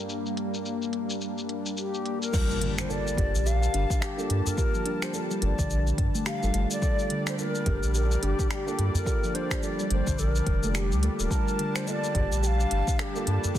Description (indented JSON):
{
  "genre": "organic downtempo",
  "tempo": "107 BPM",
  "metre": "4/4",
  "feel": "swing 59% on 16ths",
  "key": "G minor",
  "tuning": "A4 = 438 Hz",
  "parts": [
    { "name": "felt-muted upright piano", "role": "accompaniment", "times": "0.0-13.6 s", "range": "G2 to Bb4", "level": "-38 LUFS", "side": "right 4 dB", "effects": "sidechain pumping, digital delay" },
    { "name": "warm analog pad", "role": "sustained chords", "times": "0.0-13.6 s", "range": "G3 to A5", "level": "-34 LUFS", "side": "left 1 dB", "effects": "chorus, tremolo, sidechain pumping" },
    { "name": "organic electronic drum kit", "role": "drums", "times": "0.1-13.6 s", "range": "crash cymbal, finger snaps, hi-hat, shaker", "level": "-35 LUFS", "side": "left 1 dB", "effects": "overdrive, low-pass filter on perc, low-pass filter on hats, low-pass filter on cymbals, soft clipping on snare, low-pass filter on snare" },
    { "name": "breathy ney", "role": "melody", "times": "1.8-13.4 s", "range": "G4 to G5", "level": "-33 LUFS", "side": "left 3 dB", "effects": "digital delay" },
    { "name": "steel tongue drum", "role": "arpeggios", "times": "2.3-13.6 s", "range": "D3 to G4", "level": "-32 LUFS", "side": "equal", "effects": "digital delay" },
    { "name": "electronic kick drum", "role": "drums", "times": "2.3-13.6 s", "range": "none", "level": "-28 LUFS", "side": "equal", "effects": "none" },
    { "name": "impact", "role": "sound effects", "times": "2.3-4.6 s", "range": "none", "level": "-34 LUFS", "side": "equal", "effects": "none" },
    { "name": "bronze singing bowl", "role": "texture", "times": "2.3-13.6 s", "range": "Bb4 to A5", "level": "-44 LUFS", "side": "right 8 dB", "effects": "none" },
    { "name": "warm sub bass", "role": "bass", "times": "3.2-13.4 s", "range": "D1 to G2", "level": "-26 LUFS", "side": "equal", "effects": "sidechain pumping" },
    { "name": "udu", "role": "percussion", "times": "3.2-13.5 s", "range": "none", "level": "-31 LUFS", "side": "right 1 dB", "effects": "none" }
  ],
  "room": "light reverb, studio reverb",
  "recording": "dense, heavily limited modern master",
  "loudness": "-25 LUFS",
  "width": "side -12 dB against mid",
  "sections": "0.0-2.3 A section; 2.3-13.6 B section",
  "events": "impact 2.3-4.6",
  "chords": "0.0 Gm7"
}